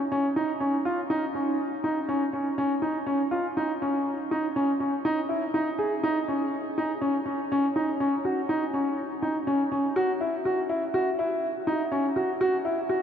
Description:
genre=progressive instrumental, progressive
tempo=122 BPM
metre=5/4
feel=straight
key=unclear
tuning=A4 = 440 Hz
part: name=warm baby grand piano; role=solo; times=0.1-13.0 s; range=C#4 to G#4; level=-24 LUFS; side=equal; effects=none
room=wet huge ambient reverb, RT60 7.4 s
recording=in a vast, echoing space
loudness=-24 LUFS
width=side -8 dB against mid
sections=0.0-10.0 A section; 10.0-13.0 B section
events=none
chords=none

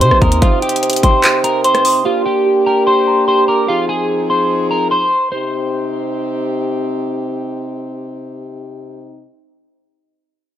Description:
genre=hip hop, trap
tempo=147 BPM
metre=4/4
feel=half-time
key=C minor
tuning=A4 = 439 Hz
part: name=electric guitar at the edge of break-up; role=melody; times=0.0-6.5 s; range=F4 to C6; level=-16 LUFS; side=left 1 dB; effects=low-pass filter, digital delay
part: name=muted felt-like synth keys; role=accompaniment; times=0.0-3.7 s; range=G4 to Eb6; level=-17 LUFS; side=right 6 dB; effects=chorus, low-pass filter
part: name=mellow French horn section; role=sustained chords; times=0.0-9.3 s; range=C3 to Ab4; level=-19 LUFS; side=left 2 dB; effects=none
part: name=trap drum kit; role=drums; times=0.0-1.9 s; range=handclaps, hi-hat, kick drum, rim click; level=-15 LUFS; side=equal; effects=none
room=light reverb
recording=none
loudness=-13 LUFS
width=side -11 dB against mid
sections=0.0-5.3 A section; 5.3-8.6 B section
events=none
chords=0.0 Cm; 2.1 Gm; 3.7 Fm7; 5.3 Cm

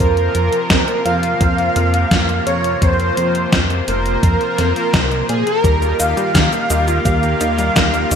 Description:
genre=synthwave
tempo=85 BPM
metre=4/4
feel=straight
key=unclear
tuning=A4 = 439 Hz
part: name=soft supersaw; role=melody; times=0.0-8.2 s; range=Ab4 to F5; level=-19 LUFS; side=right 1 dB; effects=vintage 12-bit sampler grit, digital delay
part: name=FM electric piano with soft pad layer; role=second line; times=0.0-8.2 s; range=Ab4 to F5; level=-25 LUFS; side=left 1 dB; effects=none
part: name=warm analog pad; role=sustained chords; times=0.0-8.2 s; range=C3 to C5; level=-24 LUFS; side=equal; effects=chorus, tremolo, sidechain pumping
part: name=analog synth brass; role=stabs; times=0.0-8.2 s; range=Bb3 to C5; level=-24 LUFS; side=left 1 dB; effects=chorus
part: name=chorused synth bass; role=bass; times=0.0-8.2 s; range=F1 to Bb2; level=-19 LUFS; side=equal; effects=none
part: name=gated 80s digital drum machine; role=drums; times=0.0-8.2 s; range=cabasa, hi-hat, snare drum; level=-19 LUFS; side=equal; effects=gated reverb, gated reverb snare, overdrive
part: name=electronic kick drum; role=drums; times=0.7-7.9 s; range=none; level=-18 LUFS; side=equal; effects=overdrive
part: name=analog pluck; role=arpeggios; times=5.6-8.2 s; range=G3 to F4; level=-25 LUFS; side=equal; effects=chorus, ping-pong delay
room=moderate plate reverb, RT60 3.2 s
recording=bright 1980s-style digital production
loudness=-13 LUFS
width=side -7 dB against mid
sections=0.0-8.2 A section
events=none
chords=0.0 Fsus4; 5.6 Ebadd9

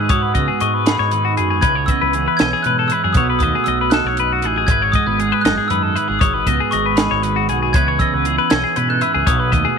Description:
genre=math rock and midwest emo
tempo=78 BPM (dotted quarters)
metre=6/8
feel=straight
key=unclear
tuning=A4 = 440 Hz
part: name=glockenspiel with soft plastic mallets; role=melody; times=0.0-9.8 s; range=B5 to G#6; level=-20 LUFS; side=right 1 dB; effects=tape echo
part: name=twelve-string electric guitar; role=accompaniment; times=0.0-9.8 s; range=F#2 to F#4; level=-23 LUFS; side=right 11 dB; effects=analog chorus
part: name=clean electric guitar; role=arpeggios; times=0.0-9.8 s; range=F#4 to D#5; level=-20 LUFS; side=left 13 dB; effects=none
part: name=growling fingered electric bass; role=bass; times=0.0-9.6 s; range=F#1 to C#3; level=-22 LUFS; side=equal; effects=overdrive
part: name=compact cocktail drum kit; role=drums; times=0.1-9.6 s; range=hi-hat, kick drum, snare drum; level=-19 LUFS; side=equal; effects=none
room=light reverb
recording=1960s-style stereo with parts hard left and right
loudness=-14 LUFS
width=side -6 dB against mid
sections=0.0-9.8 A section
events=none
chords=0.0 G#m7; 1.6 C#m7; 3.2 B7; 4.7 G#m7; 7.7 C#m7; 9.3 B7

